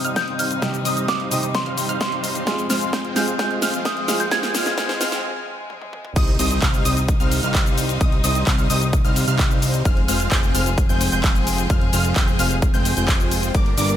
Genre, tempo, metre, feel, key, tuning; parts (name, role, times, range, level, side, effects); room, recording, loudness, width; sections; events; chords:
EDM, festival progressive house; 130 BPM; 4/4; straight; C minor; A4 = 440 Hz
soft synth bell; melody; 0.0-5.2 s; C6 to Ab6; -26 LUFS; equal; chorus, phaser, ping-pong delay
dark grand piano; accompaniment; 0.0-6.2 s; C3 to Ab4; -28 LUFS; right 2 dB; sidechain pumping
rich chamber string section; sustained chords; 0.0-14.0 s; F2 to Bb4; -29 LUFS; left 2 dB; sidechain pumping
wide unison pluck; arpeggios; 0.0-14.0 s; D6 to G6; -29 LUFS; moving between left 2 dB and right 5 dB; auto-pan, sidechain pumping, ping-pong delay
dense compressed supersaw; riff; 0.0-14.0 s; G3 to G5; -26 LUFS; equal; sidechain pumping, low-pass filter, ping-pong delay
big-room dance drum kit; drums; 0.0-14.0 s; crash cymbal, handclaps, hi-hat, shaker, snare drum, toms; -25 LUFS; left 1 dB; studio reverb
riser and impact; sound effects; 1.7-8.0 s; -35 LUFS; equal
electronic kick drum; drums; 0.2-13.6 s; -20 LUFS; equal; overdrive, high-pass filter on kick, studio reverb
fat analog bass; bass; 6.2-14.0 s; F1 to C2; -23 LUFS; equal; tube saturation, sidechain pumping
light reverb; high-pass filter; -17 LUFS; side -10 dB against mid
0.0-6.2 A section; 6.2-14.0 B section
build-up 0.0-6.2; drum fill 0.0-5.2, 5.7-6.2; filter sweep on supersaw synth 0.0-6.2; break 5.2-6.2; drop 6.2-14.0; impact 6.2-8.0
0.0 Cm; 2.5 Fm; 6.2 Cm; 9.9 Fm